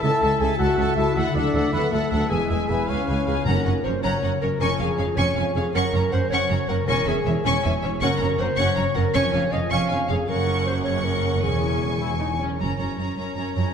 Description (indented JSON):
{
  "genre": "cinematic, heroic adventure film score",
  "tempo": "105 BPM (dotted quarters)",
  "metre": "6/8",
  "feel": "straight",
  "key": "D lydian",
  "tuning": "A4 = 439 Hz",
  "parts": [
    { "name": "rich symphonic violin section", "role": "melody", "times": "0.0-13.7 s", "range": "Db5 to Db6", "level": "-29 LUFS", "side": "left 2 dB", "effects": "none" },
    { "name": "clear oboe", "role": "second line", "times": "0.0-3.5 s", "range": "E5 to E#5", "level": "-33 LUFS", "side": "right 2 dB", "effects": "none" },
    { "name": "mellow clarinet", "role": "second line", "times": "0.0-12.0 s", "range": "G#4 to F5", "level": "-27 LUFS", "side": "equal", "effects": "none" },
    { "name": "mellow silver concert flute", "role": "second line", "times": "0.0-3.5 s", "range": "F#5 to A5", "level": "-35 LUFS", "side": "left 3 dB", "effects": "none" },
    { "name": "rich studio violin section", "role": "second line", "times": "0.0-13.7 s", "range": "Bb4 to Ab5", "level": "-34 LUFS", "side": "left 3 dB", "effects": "none" },
    { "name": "clear symphonic viola section", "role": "accompaniment", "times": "0.0-13.7 s", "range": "Db4 to B4", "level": "-30 LUFS", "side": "right 1 dB", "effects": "none" },
    { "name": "mellow French horn section", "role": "sustained chords", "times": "0.0-3.5, 12.6-13.7 s", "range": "G#3 to Bb4", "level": "-27 LUFS", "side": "left 3 dB", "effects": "none" },
    { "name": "concert harp", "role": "arpeggios", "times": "0.0-13.7 s", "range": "Fb2 to Db6", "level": "-30 LUFS", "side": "left 7 dB", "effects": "none" },
    { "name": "warm trumpet", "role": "stabs", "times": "0.0-3.5 s", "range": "G#4 to A5", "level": "-30 LUFS", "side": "right 1 dB", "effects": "none" },
    { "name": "clear studio double bass section", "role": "bass", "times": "0.0-12.8 s", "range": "E1 to D2", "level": "-28 LUFS", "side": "right 3 dB", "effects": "none" },
    { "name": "rich symphonic cello section", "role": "bass", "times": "0.0-13.6 s", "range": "C#2 to Gb2", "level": "-27 LUFS", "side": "right 3 dB", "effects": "none" },
    { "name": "timpani", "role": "percussion", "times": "3.5-4.0, 8.0-8.5 s", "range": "Gb2", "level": "-31 LUFS", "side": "left 3 dB", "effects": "none" }
  ],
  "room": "wet scoring stage reverb, RT60 1.9 s",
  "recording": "none",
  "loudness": "-20 LUFS",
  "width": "side -7 dB against mid",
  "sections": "0.0-3.5 A section; 3.5-12.6 B section; 12.6-13.7 C section",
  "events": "none",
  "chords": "0.0 A/C#; 1.2 Dadd9; 2.3 E; 2.9 C#7; 3.5 Gb; 4.6 Db/F; 5.7 Gb; 6.9 Dbm/Fb; 8.0 Gb; 9.1 Db/F; 10.3 Gb; 11.4 Dbm/Fb; 12.6 Gb"
}